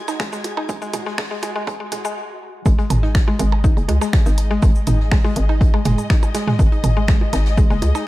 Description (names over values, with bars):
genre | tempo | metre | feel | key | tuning
minimal techno | 122 BPM | 4/4 | straight | unclear | A4 = 441 Hz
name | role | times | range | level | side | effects
dark studio string section | texture | 0.0-8.1 s | G#3 to G#6 | -31 LUFS | left 2 dB | sidechain pumping
pulsing gated texture | texture | 0.0-2.2 s | F#4 | -39 LUFS | left 1 dB | chorus, built-in reverb, sidechain pumping
mallet-like synth pluck | riff | 0.1-8.0 s | G#3 to D#4 | -25 LUFS | equal | chorus, sidechain pumping, tape echo
punchy analog drum machine | drums | 0.1-8.0 s | finger snaps, hi-hat, shaker | -29 LUFS | equal | overdrive
soft-mallet drum kit | drums | 0.1-8.1 s | hi-hat, snare drum | -37 LUFS | left 2 dB | high-pass filter on hats, high-pass filter on snare, high-pass filter on room
electronic percussion blips and toms | percussion | 0.1-8.0 s | none | -24 LUFS | right 3 dB | none
electronic kick drum | drums | 0.2-7.7 s | none | -15 LUFS | equal | overdrive
hollow knocking FM bass | bass | 2.7-7.9 s | F#1 to C#2 | -19 LUFS | equal | sidechain pumping
room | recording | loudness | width
small room ambience | dark, warm production, high-pass filter | -16 LUFS | side -17 dB against mid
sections
0.0-2.7 A section; 2.7-8.1 B section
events
build-up 0.0-2.7; filter sweep 0.0-2.7; stop 2.2-2.7; drop 2.7-8.1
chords
0.0 G#5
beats
0.20 | 0.69 1.18 1.67 2.17 | 2.66 3.15 3.64 4.13 | 4.62 5.12 5.61 6.10 | 6.59 7.08 7.58 8.07